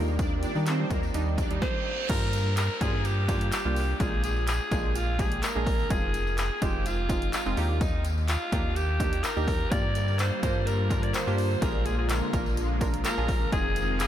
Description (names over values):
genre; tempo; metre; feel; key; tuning
dance-pop; 126 BPM; 4/4; straight; unclear; A4 = 439 Hz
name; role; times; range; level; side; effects
soft supersaw; melody; 0.0-1.5 s; Bb3 to D5; -37 LUFS; right 1 dB; analog chorus, sidechain pumping, diffuse ambient delay
analog pluck; accompaniment; 0.0-14.1 s; G3 to Bb4; -34 LUFS; right 2 dB; chorus, sidechain pumping
warm analog pad; sustained chords; 0.0-1.6, 9.7-14.1 s; D3 to D5; -36 LUFS; left 1 dB; chorus, sidechain pumping
sub bass with octave; bass; 0.0-14.1 s; F1 to Eb3; -29 LUFS; equal; sidechain pumping
tambourine; percussion; 0.1-14.1 s; none; -45 LUFS; left 8 dB; none
punchy analog drum machine; drums; 0.2-14.1 s; crash cymbal, handclaps, hi-hat, kick drum, snare drum; -30 LUFS; equal; none
reverse cymbal and downlifter; sound effects; 1.4-5.9 s; none; -39 LUFS; right 2 dB; none
raspy alto saxophone; melody; 1.6-14.1 s; Eb4 to D5; -31 LUFS; equal; diffuse ambient delay
room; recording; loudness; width
light reverb; none; -24 LUFS; side -11 dB against mid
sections
0.0-2.1 A section; 2.1-14.1 B section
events
reverse cymbal 1.4-2.1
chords
0.0 Ebmaj7; 2.1 Gm7; 4.0 Bb7; 5.9 Fm7; 7.6 Ebmaj7; 9.7 Gm7; 11.6 Bb7; 13.5 Fm7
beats
| 0.19 0.67 1.14 1.62 | 2.10 2.57 3.05 3.52 | 4.00 4.48 4.95 5.43 | 5.91 6.38 6.86 7.33 | 7.81 8.29 8.76 9.24 | 9.71 10.19 10.67 11.14 | 11.62 12.10 12.57 13.05 | 13.52 14.00